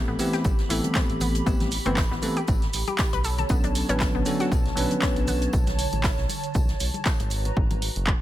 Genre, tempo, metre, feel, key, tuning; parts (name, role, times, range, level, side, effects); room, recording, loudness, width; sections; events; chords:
deep house; 118 BPM; 4/4; swing 55% on 16ths; A4 = 440 Hz
hollow soft pad; sustained chords; 0.0-7.6 s; D3 to B5; -33 LUFS; right 3 dB; ensemble chorus, vintage 12-bit sampler grit, sidechain pumping
bell-like tine electric piano; stabs; 0.0-5.5 s; E3 to B4; -27 LUFS; left 1 dB; sidechain pumping, ping-pong delay
analog pluck; arpeggios; 0.1-5.4 s; B3 to B4; -33 LUFS; left 3 dB; chorus, sidechain pumping, dub echo
round analog bass; bass; 0.1-8.1 s; F#1 to B1; -28 LUFS; equal; sidechain pumping
open jazz drum kit; drums; 0.2-7.4 s; hi-hat, snare drum, tambourine; -40 LUFS; left 2 dB; sidechain pumping on hats, high-pass filter on hats, high-pass filter on snare, sidechain pumping on perc, high-pass filter on perc, high-pass filter on room
punchy analog drum machine; drums; 0.2-8.2 s; handclaps, hi-hat; -31 LUFS; right 1 dB
congas; percussion; 0.2-7.8 s; -38 LUFS; left 2 dB
maracas; percussion; 0.2-7.5 s; -39 LUFS; right 5 dB
electronic kick drum; drums; 0.4-8.2 s; -25 LUFS; equal
light reverb, small room ambience; -22 LUFS; side -14 dB against mid
0.0-8.2 A section
0.0 Am9; 3.2 Bm9; 7.3 G#m9